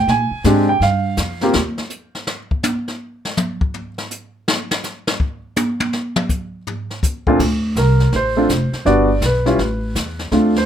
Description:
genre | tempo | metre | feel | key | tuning
jazz piano trio | 164 BPM | 4/4 | swing 65% on 8ths | unclear | A4 = 440 Hz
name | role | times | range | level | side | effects
warm concert grand piano | melody | 0.0-1.5, 7.3-10.7 s | Bb2 to Ab5 | -16 LUFS | right 1 dB | none
upright bass | bass | 0.0-1.8, 7.4-10.7 s | F1 to Bb2 | -18 LUFS | equal | none
jazz brush drum kit | drums | 0.1-10.7 s | brushed snare drum, crash cymbal, hi-hat, kick drum, snare drum, toms | -21 LUFS | left 1 dB | none
room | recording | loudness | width
light reverb | none | -16 LUFS | side -9 dB against mid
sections
0.0-7.4 A section; 7.4-10.7 B section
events
grand piano solo 0.0-7.4; drum solo 1.6-7.4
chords
0.1 Bb7sus2; 1.6 N.C.; 7.4 Bbmaj9; 8.9 Em7 (rootless); 9.6 A5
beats
| 0.08 0.45 0.82 1.18 | 1.55 1.92 2.28 2.65 | 3.02 3.38 3.75 4.11 | 4.48 4.84 5.21 5.58 | 5.94 6.31 6.67 7.04 | 7.40 7.77 8.13 8.50 | 8.86 9.23 9.59 9.96 | 10.32

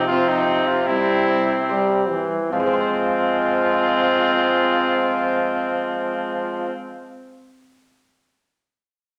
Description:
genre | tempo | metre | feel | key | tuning
classical, renaissance-style consort dance | 70-80 BPM | 4/4 | straight | F minor | A4 = 440 Hz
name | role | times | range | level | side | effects
clear cornet | melody | 0.0-6.7 s | Eb4 to F4 | -26 LUFS | equal | none
rich viola | second line | 0.0-6.7 s | C4 | -26 LUFS | equal | none
clear trombone | accompaniment | 0.0-6.7 s | E3 to Ab3 | -27 LUFS | equal | none
lute | accompaniment | 0.0-7.5 s | C3 to C5 | -31 LUFS | equal | none
clear bassoon | bass | 0.0-6.7 s | C3 to F3 | -28 LUFS | equal | none
room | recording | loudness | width
wet recital hall reverb, RT60 1.4 s | none | -20 LUFS | mono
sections
0.0-2.5 A section; 2.5-5.9 B section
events
slowing down 0.0-2.5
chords
0.0 Csus4; 0.9 C; 2.5 Fm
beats
0.12 0.89 1.69 | 2.53 3.38 4.24 5.09

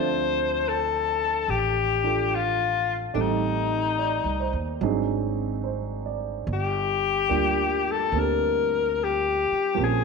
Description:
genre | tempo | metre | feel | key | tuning
jazz ballad | 72 BPM | 4/4 | swing 67% on 8ths | unclear | A4 = 441 Hz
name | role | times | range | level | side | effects
bright alto saxophone | melody | 0.0-10.0 s | D4 to C5 | -24 LUFS | left 7 dB | none
warm baby grand piano | accompaniment | 0.0-10.0 s | F3 to E5 | -29 LUFS | right 11 dB | none
upright bass | bass | 0.0-10.0 s | G1 to Eb2 | -30 LUFS | right 2 dB | none
room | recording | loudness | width
wet echo chamber reverb, RT60 1.5 s, small room ambience | 1960s-style stereo with parts hard left and right | -22 LUFS | side -4 dB against mid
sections
0.0-10.0 A section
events
none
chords
0.0 Dm9; 3.1 Am7b5; 4.8 Ab7#11; 6.5 Gm7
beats
0.65 1.48 2.31 | 3.15 3.98 4.81 5.64 | 6.47 7.30 8.13 8.96 | 9.79

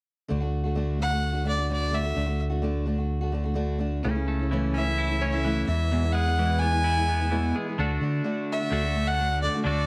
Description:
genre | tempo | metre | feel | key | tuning
rock | 128 BPM | 4/4 | straight | unclear | A4 = 437 Hz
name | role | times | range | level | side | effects
picked steel-string acoustic guitar | accompaniment | 0.3-9.9 s | E2 to F#4 | -33 LUFS | equal | none
fingered electric bass | bass | 0.3-9.8 s | C#2 to D3 | -29 LUFS | equal | none
warm fiddle | melody | 1.0-9.9 s | C#5 to G#5 | -30 LUFS | equal | slapback echo
twelve-string electric guitar | riff | 4.0-9.9 s | E2 to F#4 | -32 LUFS | equal | none
room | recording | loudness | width
moderate studio reverb, RT60 0.7 s | none | -26 LUFS | mono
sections
0.3-7.8 A section; 7.8-9.9 B section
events
none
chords
0.3 D; 4.0 A/C#; 5.7 E; 7.8 D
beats
| 0.30 0.77 1.24 1.70 | 2.17 2.64 3.11 3.58 | 4.04 4.51 4.98 5.45 | 5.91 6.38 6.85 7.32 | 7.79 8.25 8.72 9.19 | 9.66

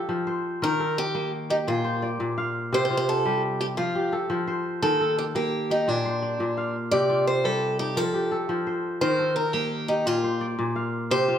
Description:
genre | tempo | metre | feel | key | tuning
west african traditional, West African string and xylophone music | 115 BPM (dotted quarters) | 12/8 | straight | unclear | A4 = 438 Hz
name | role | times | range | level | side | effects
kora | arpeggios | 0.0-11.4 s | Bb2 to F5 | -26 LUFS | left 1 dB | none
picked acoustic archtop guitar | melody | 0.6-11.4 s | D4 to D5 | -25 LUFS | equal | none
room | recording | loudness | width
moderate recital hall reverb, RT60 1.5 s | none | -23 LUFS | side -9 dB against mid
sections
0.0-11.4 A section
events
none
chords
0.0 F; 0.6 Eb; 1.7 Bb; 2.7 C5; 3.8 F; 4.8 Eb; 5.9 Bb; 6.9 Cm; 8.0 F; 9.0 Eb; 10.1 Bb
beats
0.09 | 0.62 1.15 1.68 2.20 | 2.73 3.25 3.78 4.31 | 4.83 5.36 5.88 6.40 | 6.92 7.45 7.97 8.49 | 9.02 9.54 10.06 10.58 | 11.10

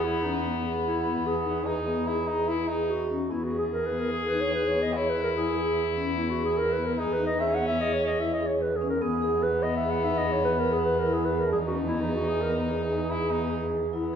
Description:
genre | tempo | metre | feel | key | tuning
contemporary instrumental, chamber music in an uneven meter | 147 BPM | 7/4 | straight | E lydian | A4 = 440 Hz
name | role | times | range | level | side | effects
mellow clarinet | melody | 0.0-14.2 s | D#4 to F#5 | -29 LUFS | equal | none
stopped French horn | second line | 0.0-14.2 s | B3 to G#4 | -32 LUFS | left 4 dB | none
vibraphone with medium mallets | arpeggios | 0.0-14.2 s | B3 to G#4 | -29 LUFS | equal | none
dark cello | bass | 0.0-14.2 s | E2 | -33 LUFS | right 3 dB | none
room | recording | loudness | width
wet recital hall reverb, RT60 1.4 s | minimal, uncompressed stereo recording | -24 LUFS | side -8 dB against mid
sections
0.0-14.2 A section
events
none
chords
0.0 Emaj7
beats
0.04 | 0.44 0.85 1.25 1.67 2.08 2.49 2.90 | 3.31 3.72 4.13 4.54 4.95 5.36 5.77 | 6.17 6.58 6.99 7.39 7.80 8.21 8.61 | 9.02 9.43 9.83 10.24 10.65 11.05 11.46 | 11.87 12.28 12.69 13.10 13.52 13.93

